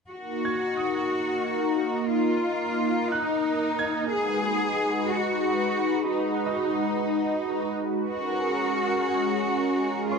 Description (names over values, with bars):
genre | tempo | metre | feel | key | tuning
cinematic | 60 BPM (dotted quarters) | 6/8 | straight | Eb minor | A4 = 440 Hz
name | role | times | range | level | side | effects
phased analog pad | sustained chords | 0.1-10.2 s | G#3 to B4 | -26 LUFS | equal | phaser, chorus
rich symphonic cello section | bass | 0.1-10.2 s | Eb4 to G#4 | -27 LUFS | left 1 dB | none
bright grand piano | texture | 0.5-10.2 s | Db5 to Ab6 | -35 LUFS | right 4 dB | tape echo
room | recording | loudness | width
light reverb | close, detailed microphones | -24 LUFS | side -5 dB against mid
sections
0.1-10.2 A section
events
none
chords
0.1 Ebmadd9/Bb; 4.1 B6/G#; 8.1 Gbadd9/Ab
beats
| 0.12 1.12 | 2.12 3.12 | 4.12 5.12 | 6.12 7.12 | 8.12 9.12 | 10.12